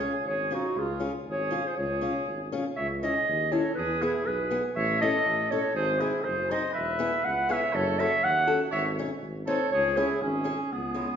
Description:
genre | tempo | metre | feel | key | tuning
alpine folk, alpine dance band | 120 BPM | 2/4 | straight | C# minor | A4 = 440 Hz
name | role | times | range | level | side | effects
mellow clarinet | melody | 0.0-11.2 s | B3 to F#5 | -27 LUFS | equal | none
clear trumpet | second line | 0.0-11.2 s | Eb4 to C#5 | -34 LUFS | right 3 dB | none
picked old ladder-braced acoustic guitar | accompaniment | 0.0-11.1 s | G#3 to A4 | -32 LUFS | left 3 dB | none
mellow tuba | bass | 0.0-11.0 s | E1 to E2 | -34 LUFS | equal | none
room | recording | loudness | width
wet recital hall reverb, RT60 1.3 s | recorded in a church or concert hall, nothing above 7.6 kHz | -25 LUFS | side -8 dB against mid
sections
0.0-2.8 A section; 2.8-10.7 B section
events
none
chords
0.0 Db; 2.8 C#m; 3.8 E; 4.7 A; 5.7 G#; 6.7 E; 7.7 F#m; 8.7 G#sus4; 9.2 G#; 9.7 C#m

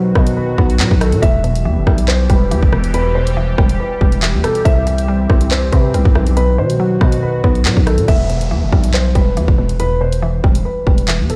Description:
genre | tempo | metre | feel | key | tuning
hip hop, drill | 140 BPM | 4/4 | half-time | E harmonic minor | A4 = 440 Hz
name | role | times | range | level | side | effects
dark concert grand piano | melody | 0.0-11.4 s | A4 to E5 | -24 LUFS | equal | low-pass filter, tape echo
mallet-like synth pluck | accompaniment | 0.0-11.4 s | E2 to C4 | -23 LUFS | equal | chorus, low-pass filter
sweeping resonant pad | sustained chords | 0.0-8.1 s | B2 to G4 | -28 LUFS | equal | chorus
growling 808-style bass | bass | 0.0-11.3 s | E1 to C3 | -19 LUFS | equal | none
drill drum kit | drums | 0.2-11.4 s | handclaps, hi-hat, kick drum, rim click | -16 LUFS | equal | none
downlifter | sound effects | 8.1-11.4 s | none | -34 LUFS | equal | none
room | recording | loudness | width
digital ambience | played on a big sound system in a bare room, stone room reverb | -14 LUFS | mono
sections
0.0-8.1 A section; 8.1-11.4 B section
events
none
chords
0.0 B; 1.2 Em; 4.7 C; 6.4 B; 8.1 Em

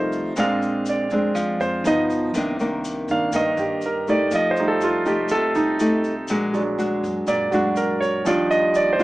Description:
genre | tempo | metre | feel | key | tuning
bossa nova | 122 BPM | 4/4 | straight | unclear | A4 = 442 Hz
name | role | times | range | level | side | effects
clear concert grand piano | accompaniment | 0.0-9.0 s | Eb3 to F5 | -21 LUFS | right 2 dB | none
nylon-string guitar | accompaniment | 0.0-9.0 s | G2 to G4 | -23 LUFS | equal | none
upright bass | bass | 0.0-9.0 s | G1 to G2 | -37 LUFS | equal | none
tube shaker | percussion | 0.1-9.0 s | none | -41 LUFS | left 4 dB | none
room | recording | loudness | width
light reverb | small speaker sound | -19 LUFS | side -18 dB against mid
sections
0.0-9.0 A section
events
grand piano solo 0.0-9.0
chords
0.4 Bb9; 1.9 G7b13; 2.3 Cm9; 4.3 F9; 6.3 Bbaug7; 8.3 Ebmaj9

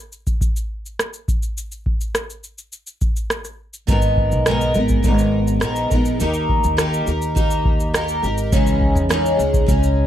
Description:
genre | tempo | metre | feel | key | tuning
acoustic pop | 104 BPM | 4/4 | straight | G# minor | A4 = 439 Hz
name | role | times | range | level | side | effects
booming analog drum machine | drums | 0.1-10.0 s | kick drum, rim click, shaker | -20 LUFS | equal | none
picked steel-string acoustic guitar | accompaniment | 3.9-10.1 s | G#2 to A#4 | -19 LUFS | equal | double-tracked left and right, plate reverb
upright bass | bass | 3.9-10.1 s | G#1 to E2 | -21 LUFS | equal | none
room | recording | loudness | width
light reverb | dark, warm production | -17 LUFS | side -11 dB against mid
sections
0.0-10.1 A section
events
none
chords
0.0 N.C.; 3.9 G#madd9; 6.2 D#; 8.5 C#madd9

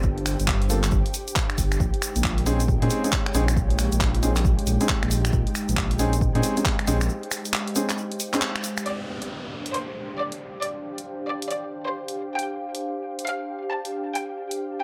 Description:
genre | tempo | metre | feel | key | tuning
UK garage, two-step garage | 136 BPM | 4/4 | swing 62% on 16ths | G minor | A4 = 440 Hz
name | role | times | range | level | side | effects
ethereal airy pad | sustained chords | 0.0-14.8 s | G4 to G5 | -40 LUFS | equal | ensemble chorus, built-in reverb, sidechain pumping
dark detuned saw bass | bass | 0.0-7.1 s | G1 to Bb2 | -26 LUFS | equal | none
electronic kick drum | drums | 0.0-6.8 s | none | -28 LUFS | equal | none
tube shaker | percussion | 0.0-8.8 s | none | -37 LUFS | equal | none
warbly tape-like pad | texture | 0.0-14.8 s | Ab3 to F5 | -35 LUFS | equal | chorus, built-in reverb, sidechain pumping
house drum kit | drums | 0.2-14.6 s | finger snaps, handclaps, hi-hat | -31 LUFS | equal | none
warm grand piano | stabs | 0.7-8.4 s | Bb3 to A4 | -30 LUFS | equal | dub echo
clear studio violin section | melody | 8.9-14.4 s | C5 to A5 | -34 LUFS | equal | dub echo
downlifter | sound effects | 8.9-12.4 s | none | -40 LUFS | equal | none
room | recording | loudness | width
light reverb, digital ambience | none | -25 LUFS | mono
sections
0.0-8.9 A section; 8.9-14.8 B section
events
break 7.1-8.9; band accent 8.4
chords
0.0 G7sus4; 1.8 Bbm11; 8.9 G7sus4

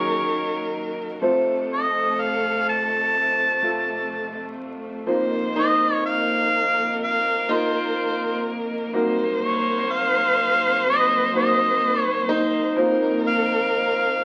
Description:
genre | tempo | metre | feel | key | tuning
acoustic folk-pop ballad | 62 BPM | 4/4 | straight | unclear | A4 = 440 Hz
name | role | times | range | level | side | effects
clear harmonica | melody | 0.0-14.2 s | C5 to A5 | -24 LUFS | equal | none
rich violin | second line | 0.0-14.2 s | A4 to C5 | -30 LUFS | equal | none
warm grand piano | accompaniment | 0.0-14.2 s | F1 to Eb5 | -28 LUFS | equal | none
clear studio string section | sustained chords | 0.0-14.2 s | Eb2 to Eb4 | -33 LUFS | equal | none
picked swing-style acoustic guitar | arpeggios | 0.0-13.2 s | Eb4 to Ab4 | -28 LUFS | equal | none
room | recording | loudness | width
wet studio reverb, RT60 0.6 s | very old 78 rpm record, vinyl crackle | -22 LUFS | mono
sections
0.0-14.2 A section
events
none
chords
0.0 Ebm7; 1.2 F; 5.1 F7sus4; 8.9 Cm7b5; 12.8 F7sus4

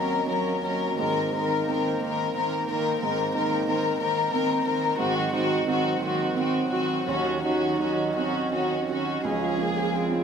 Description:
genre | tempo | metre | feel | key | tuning
neoclassical piano and strings | 54-62 BPM (dotted quarters) | 6/8 | rubato | unclear | A4 = 438 Hz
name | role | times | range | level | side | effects
warm chamber violin section | melody | 0.0-10.2 s | Gb4 to Bb4 | -26 LUFS | left 5 dB | none
warm cello | second line | 0.0-10.2 s | Eb3 to Gb3 | -34 LUFS | right 6 dB | none
rich viola | accompaniment | 0.0-10.2 s | Bb3 to Db4 | -32 LUFS | right 4 dB | none
warm upright piano | accompaniment | 0.0-10.2 s | Db2 to Bb4 | -29 LUFS | right 4 dB | none
hollow soft pad | sustained chords | 0.0-10.2 s | Gb3 to F5 | -34 LUFS | right 2 dB | chorus
room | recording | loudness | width
wet recital hall reverb, RT60 1.4 s | none | -23 LUFS | side -7 dB against mid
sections
0.0-9.3 A section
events
none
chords
0.0 Ebm7; 1.0 Abadd9; 5.0 Ab7; 7.1 Ebm7; 9.3 Db

